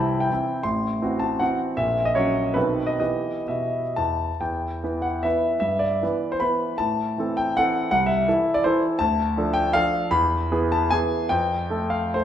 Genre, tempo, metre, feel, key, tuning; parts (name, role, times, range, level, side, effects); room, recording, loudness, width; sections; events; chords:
classical, romantic triple-time dance for piano with dotted rhythms; 115-173 BPM; 3/4; rubato; E minor; A4 = 439 Hz
clear concert grand piano; solo; 0.0-12.2 s; A1 to C6; -21 LUFS; equal
wet recital hall reverb, RT60 1.5 s; minimal, uncompressed stereo recording, lossy compression artefacts; -21 LUFS; side -10 dB against mid
0.0-4.4 A section; 4.4-12.2 B section
0.0 C; 0.7 F#m7b5/A; 1.8 F#/A#; 2.6 B7b9; 3.0 Em; 5.6 Em/G; 6.8 Am; 7.9 Am/C; 9.0 Dm; 10.1 E; 11.3 F